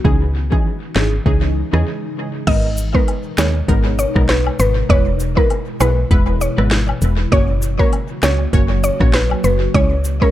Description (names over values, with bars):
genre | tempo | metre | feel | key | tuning
dancehall | 99 BPM | 4/4 | swing 56% on 16ths | G# minor | A4 = 441 Hz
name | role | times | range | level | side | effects
punchy chord stab | accompaniment | 0.0-10.3 s | E3 to C#5 | -22 LUFS | right 2 dB | chorus, tape echo
ethereal airy pad | sustained chords | 0.0-10.3 s | B2 to A#4 | -26 LUFS | left 1 dB | ensemble chorus, built-in reverb, sidechain pumping
woody FM bass | bass | 0.0-10.2 s | E1 to E2 | -17 LUFS | equal | none
afro-pop drum kit | drums | 0.0-10.3 s | crash cymbal, hi-hat, kick drum, rim click, snare drum | -17 LUFS | equal | none
mallet-like synth pluck | melody | 2.5-10.3 s | A#4 to D#5 | -21 LUFS | equal | chorus, tape echo
cabasa and woodblock | percussion | 2.8-10.2 s | none | -29 LUFS | left 7 dB | tape echo
room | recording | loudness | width
light reverb | echo-heavy mix | -14 LUFS | side -13 dB against mid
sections
0.0-2.5 A section; 2.5-10.3 B section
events
break 1.9-2.5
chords
0.0 C#madd9; 2.5 G#madd9; 4.9 E; 7.3 F#; 9.7 C#m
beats
| 0.05 0.66 1.26 1.87 | 2.47 3.08 3.69 4.29 | 4.90 5.50 6.11 6.71 | 7.32 7.93 8.53 9.14 | 9.74